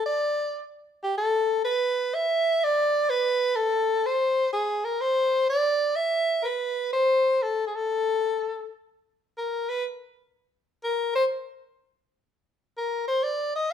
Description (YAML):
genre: jazz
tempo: 124 BPM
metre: 4/4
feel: swing 67% on 8ths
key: unclear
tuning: A4 = 442 Hz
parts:
  - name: breathy soprano saxophone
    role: solo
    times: 0.0-13.7 s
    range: G4 to E5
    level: -23 LUFS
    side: equal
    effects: none
room: wet large studio reverb, RT60 1.0 s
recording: band playing live in one room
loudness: -23 LUFS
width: side -8 dB against mid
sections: 0.0-8.9 A section; 8.9-13.7 B section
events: soprano saxophone solo 8.9-13.7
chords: none